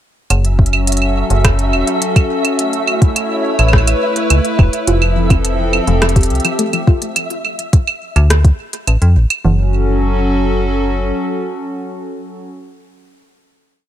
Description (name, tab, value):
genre	IDM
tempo	105 BPM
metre	4/4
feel	straight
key	F# phrygian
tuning	A4 = 440 Hz
part	hollow soft pad	sustained chords	0.3-12.5 s	F3 to C#5	-18 LUFS	left 1 dB	chorus
part	metallic FM bass	bass	0.3-11.1 s	E1 to F2	-14 LUFS	equal	none
part	organic electronic drum kit	drums	0.3-9.4 s	claves, hi-hat, rim click	-19 LUFS	right 3 dB	overdrive, digital delay
part	flickering grainy texture	texture	0.5-7.2 s	E5	-23 LUFS	right 1 dB	built-in reverb, sidechain pumping
part	electronic kick drum	drums	0.6-8.6 s	none	-10 LUFS	equal	overdrive
part	warbly dusty pluck	arpeggios	4.9-9.7 s	E3 to G4	-21 LUFS	left 1 dB	chorus, digital delay
room	digital ambience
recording	none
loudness	-12 LUFS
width	side -11 dB against mid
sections	0.3-9.4 groove; 9.4-11.7 final chord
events	none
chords	0.3 F#m7; 2.6 A; 4.9 Fadd9; 7.2 Dm; 9.4 F#m